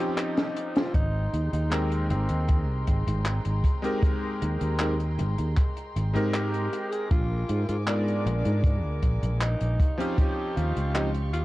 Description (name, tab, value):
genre	vaporwave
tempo	78 BPM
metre	4/4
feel	straight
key	Ab major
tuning	A4 = 439 Hz
part	growling tenor saxophone	melody	0.0-11.4 s	C4 to Ab4	-34 LUFS	equal	tape echo
part	bright electric grand piano	accompaniment	0.0-11.1 s	F3 to D5	-32 LUFS	left 1 dB	wide subtle chorus, tape echo
part	compact cocktail drum kit	drums	0.2-11.4 s	handclaps, hi-hat, snare drum	-31 LUFS	left 1 dB	none
part	warm chamber string section	sustained chords	0.9-11.4 s	Ab3 to D6	-39 LUFS	left 1 dB	vintage 12-bit sampler grit
part	fretless electric bass	bass	0.9-11.4 s	Ab1 to Ab2	-26 LUFS	equal	ensemble chorus
part	kick drum	drums	0.9-10.3 s	none	-24 LUFS	equal	none
room	studio reverb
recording	echo-heavy mix, cassette tape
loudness	-24 LUFS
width	side -17 dB against mid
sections	0.0-11.4 A section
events	break 0.0-0.9; drum fill 0.4-0.9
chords	0.0 Eb13; 0.9 Abmaj9; 7.1 Bb7b9; 9.8 Eb13